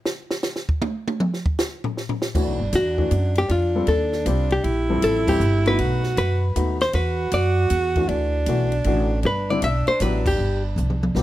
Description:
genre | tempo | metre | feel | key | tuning
jazz, small-group swing and bop | 157 BPM | 3/4 | swing 65% on 8ths | G major | A4 = 440 Hz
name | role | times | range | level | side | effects
compact cocktail drum kit | drums | 0.1-11.2 s | crash cymbal, hi-hat, kick drum, ride cymbal, snare drum, toms | -26 LUFS | equal | none
upright bass | bass | 2.3-11.2 s | G1 to F#2 | -22 LUFS | equal | none
breathy alto saxophone | second line | 2.4-11.2 s | D4 to F#4 | -26 LUFS | right 4 dB | none
warm baby grand piano | accompaniment | 2.4-11.2 s | D3 to A4 | -26 LUFS | left 4 dB | none
hollow-body jazz guitar | melody | 2.8-10.6 s | F4 to E5 | -23 LUFS | left 2 dB | none
room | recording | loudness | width
little or no reverb | none | -19 LUFS | side -14 dB against mid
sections
0.0-2.3 A section; 2.3-11.2 B section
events
drum solo 0.0-2.3; band accent 5.2, 10.2; drum fill 10.8-11.2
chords
0.0 N.C.; 2.3 Gmaj7sus2 (rootless); 3.5 F13; 4.6 Bbsus2; 5.8 B7; 6.9 E7sus2; 8.1 D69; 9.2 Gmaj13

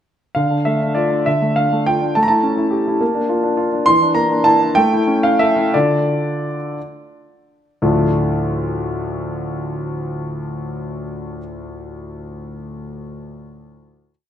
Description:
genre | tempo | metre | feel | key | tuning
classical-period piano sonatina | 56-71 BPM (dotted quarters) | 6/8 | rubato | D minor | A4 = 441 Hz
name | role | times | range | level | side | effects
clear grand piano | solo | 0.3-14.1 s | D2 to C6 | -16 LUFS | equal | none
room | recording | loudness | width
wet recital hall reverb, RT60 1.7 s | dark, warm production | -15 LUFS | side -10 dB against mid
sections
0.4-7.8 A section; 7.8-11.9 final chord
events
slowing down 3.0-7.8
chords
0.4 Dm; 2.1 A7; 3.0 Bb; 3.9 Bbmaj9#11/E; 4.8 A7; 5.7 Dm

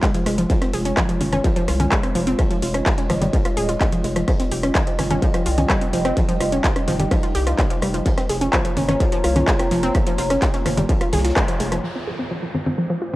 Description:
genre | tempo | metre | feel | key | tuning
melodic techno | 127 BPM | 4/4 | straight | unclear | A4 = 437 Hz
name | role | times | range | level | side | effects
dark analog pad | sustained chords | 0.0-13.2 s | G3 to Eb5 | -28 LUFS | equal | chorus, sidechain pumping
wide unison pluck | arpeggios | 0.0-13.2 s | F3 to Ab4 | -23 LUFS | equal | sidechain pumping, tape echo
electronic kick drum | drums | 0.0-11.5 s | none | -20 LUFS | equal | distortion, cassette tape
soft brush drum kit | drums | 0.0-11.7 s | ride cymbal, snare drum | -41 LUFS | right 1 dB | none
techno drum kit | drums | 0.0-13.2 s | congas, crash cymbal, handclaps, hi-hat, rim click | -24 LUFS | equal | low-pass filter on snare, cassette tape, sidechain pumping on hats, low-pass filter on hats, sidechain pumping on perc, low-pass filter on perc, sidechain pumping on cymbals, low-pass filter on cymbals
warbly tape-like pad | texture | 0.0-13.2 s | F4 to Bb5 | -31 LUFS | right 1 dB | chorus, built-in reverb, sidechain pumping
round analog bass | bass | 0.3-11.8 s | Eb1 to C2 | -24 LUFS | equal | sidechain pumping
downlifter | sound effects | 11.8-13.2 s | none | -32 LUFS | right 1 dB | none
room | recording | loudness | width
light reverb, digital ambience | home recording on cassette | -17 LUFS | side -17 dB against mid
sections
0.0-11.8 A section; 11.8-13.2 B section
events
band accent 11.4; filter sweep on drum 11.8-13.2; filter sweep on synth arpeggio sound 11.8-13.2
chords
0.5 Db/F; 4.3 Ebadd9/F; 8.1 Bbm/F; 11.8 Fm

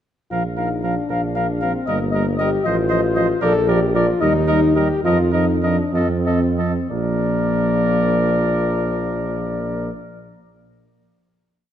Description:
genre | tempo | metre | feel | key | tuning
classical, brass quintet | 59-78 BPM (dotted quarters) | 6/8 | rubato | Bb major | A4 = 441 Hz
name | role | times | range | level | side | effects
mellow cornet | melody | 0.3-9.9 s | D5 to F5 | -23 LUFS | left 4 dB | none
bright trumpet | second line | 0.3-9.9 s | A4 to C5 | -29 LUFS | right 8 dB | none
dark French horn | accompaniment | 0.3-9.9 s | Bb3 to A4 | -23 LUFS | left 4 dB | none
mellow euphonium | accompaniment | 0.3-9.9 s | F3 to G3 | -26 LUFS | right 5 dB | none
warm tuba | bass | 0.3-9.9 s | G1 to F2 | -21 LUFS | right 2 dB | none
room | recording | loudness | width
moderate concert hall reverb, RT60 2.1 s | dark, warm production | -17 LUFS | side -10 dB against mid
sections
0.3-6.9 A section; 6.9-10.8 final chord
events
slowing down 2.7-6.9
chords
0.3 Bb; 1.9 Eb/G; 2.7 F7/A; 3.4 Bb; 4.2 Eb; 5.0 F7sus4; 5.9 F7; 6.9 Bb

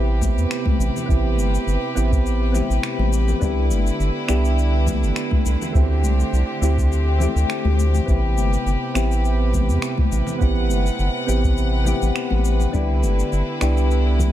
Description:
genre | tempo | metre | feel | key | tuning
sunset chillout | 103 BPM | 4/4 | swing 54% on 16ths | A dorian | A4 = 440 Hz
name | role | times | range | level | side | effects
soft electric-piano-like synth keys | accompaniment | 0.0-14.3 s | A3 to G4 | -25 LUFS | moving between left 7 dB and right 7 dB | chorus, auto-pan, digital delay
rich chamber string section | sustained chords | 0.0-14.3 s | C3 to F#5 | -28 LUFS | equal | none
round analog bass | bass | 0.0-14.3 s | G1 to E2 | -19 LUFS | equal | none
electronic cabasa and finger snaps | drums | 0.2-14.3 s | none | -31 LUFS | left 2 dB | none
electronic kick drum | drums | 0.2-14.3 s | none | -21 LUFS | equal | none
congas | percussion | 0.2-14.3 s | none | -30 LUFS | left 6 dB | none
room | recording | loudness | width
digital ambience | none | -17 LUFS | side -12 dB against mid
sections
0.0-14.3 A section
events
none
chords
0.0 Am9; 3.4 Cmaj9; 5.7 D7sus4; 8.1 Am9; 12.7 Cmaj9

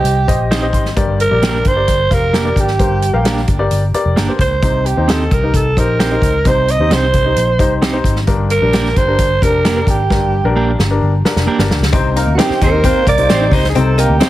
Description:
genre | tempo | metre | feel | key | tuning
uptempo 1960s-style soul | 131 BPM | 4/4 | straight | C minor | A4 = 440 Hz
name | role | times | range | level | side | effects
growling alto saxophone | melody | 0.0-14.3 s | F#4 to Eb5 | -16 LUFS | right 3 dB | none
warm baby grand piano | accompaniment | 0.0-14.3 s | G2 to C6 | -20 LUFS | left 3 dB | none
vintage muted picked electric bass | bass | 0.0-14.2 s | F1 to Eb2 | -17 LUFS | equal | none
natural country drum kit | drums | 0.0-14.3 s | hi-hat, kick drum, snare drum | -17 LUFS | equal | none
clean electric guitar | stabs | 0.5-14.3 s | Bb3 to C5 | -22 LUFS | right 4 dB | tube saturation, spring reverb, analog delay
archtop guitar, miked and amplified | riff | 11.9-14.3 s | Bb3 to Eb4 | -20 LUFS | left 8 dB | none
mellow horn section | second line | 12.2-14.3 s | Bb3 to C5 | -21 LUFS | right 3 dB | none
room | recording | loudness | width
light reverb, studio ambience | heavily compressed radio sound, multiband compression | -11 LUFS | side -15 dB against mid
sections
0.0-11.9 A section; 11.9-14.3 B section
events
grand piano fill 0.3-1.0; drum fill 10.1-11.9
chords
0.0 Cm; 1.0 Gm; 4.6 Cm; 8.3 Gm; 11.9 Cm

